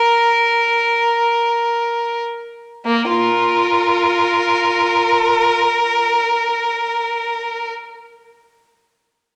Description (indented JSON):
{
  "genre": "classical, baroque-style suite movement for unaccompanied violin",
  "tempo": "free time",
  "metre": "none",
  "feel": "none",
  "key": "unclear",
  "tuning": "A4 = 440 Hz",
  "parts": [
    { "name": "rich violin", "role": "solo", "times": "0.0-7.7 s", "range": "Bb3 to Bb4", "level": "-17 LUFS", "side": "equal", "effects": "none" }
  ],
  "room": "wet recital hall reverb, RT60 1.7 s",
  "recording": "none",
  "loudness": "-17 LUFS",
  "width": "mono",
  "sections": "0.0-2.9 A section; 2.9-7.9 B section",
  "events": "slowing down 0.0-2.9",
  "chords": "none"
}